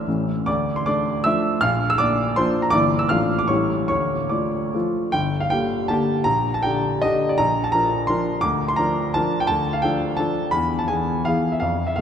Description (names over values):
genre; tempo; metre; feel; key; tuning
classical, romantic triple-time dance for piano with dotted rhythms; 140-182 BPM; 3/4; rubato; D minor, G minor from 5.1 s; A4 = 438 Hz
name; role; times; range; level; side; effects
warm grand piano; solo; 0.0-12.0 s; G1 to F6; -19 LUFS; equal; none
room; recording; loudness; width
wet cathedral reverb, RT60 5.2 s; recorded in a church or concert hall; -19 LUFS; side -8 dB against mid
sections
0.0-5.1 A section; 5.1-12.0 B section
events
none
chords
0.1 A; 0.5 Dm; 1.6 Bb; 2.7 Edim/G; 3.1 Dm/A; 3.5 A7; 3.9 Dm; 5.1 Gm; 6.3 Gm/Bb; 7.4 Bb; 8.4 Bb/D; 9.5 Dm; 10.5 E